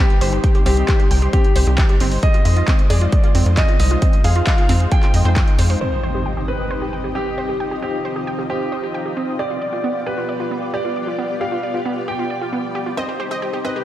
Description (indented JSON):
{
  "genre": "uplifting trance",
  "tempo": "134 BPM",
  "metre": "4/4",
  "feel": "straight",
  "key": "C harmonic minor",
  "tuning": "A4 = 440 Hz",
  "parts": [
    { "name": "clear concert grand piano", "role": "second line", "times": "0.0-13.8 s", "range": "G4 to G5", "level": "-24 LUFS", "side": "equal", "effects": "wide subtle chorus, diffuse ambient delay" },
    { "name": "analog string pad", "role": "sustained chords", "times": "0.0-13.8 s", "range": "G3 to Eb5", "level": "-26 LUFS", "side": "left 1 dB", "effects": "ensemble chorus, sidechain pumping" },
    { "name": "wide unison pluck", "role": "arpeggios", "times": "0.0-13.7 s", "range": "B3 to G5", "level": "-26 LUFS", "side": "right 3 dB", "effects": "cassette tape, sidechain pumping, diffuse ambient delay" },
    { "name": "tight sequencer bass", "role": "bass", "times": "0.0-5.8 s", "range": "G1 to F2", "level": "-16 LUFS", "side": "equal", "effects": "sidechain pumping" },
    { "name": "punchy analog drum machine", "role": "drums", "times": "0.1-5.8 s", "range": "handclaps, hi-hat", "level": "-27 LUFS", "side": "equal", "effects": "low-pass filter on hats, low-pass filter on snare" },
    { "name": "electronic kick drum", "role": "drums", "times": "0.4-5.5 s", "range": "none", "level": "-16 LUFS", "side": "equal", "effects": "overdrive" },
    { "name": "impact", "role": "sound effects", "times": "5.8-7.6 s", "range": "none", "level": "-27 LUFS", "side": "equal", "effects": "none" },
    { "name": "wide unison pluck", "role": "melody", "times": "13.0-13.8 s", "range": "G4 to Eb5", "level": "-26 LUFS", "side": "equal", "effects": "sidechain pumping, diffuse ambient delay" }
  ],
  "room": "moderate church reverb, RT60 3.5 s",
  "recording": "dreamy mix soaked in reverb",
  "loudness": "-16 LUFS",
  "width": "side -13 dB against mid",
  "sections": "0.0-5.8 A section; 5.8-13.8 B section",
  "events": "impact 5.8-7.6",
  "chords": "0.0 Cm; 2.2 Fm7; 5.8 Cm; 9.4 G7; 13.0 Cm"
}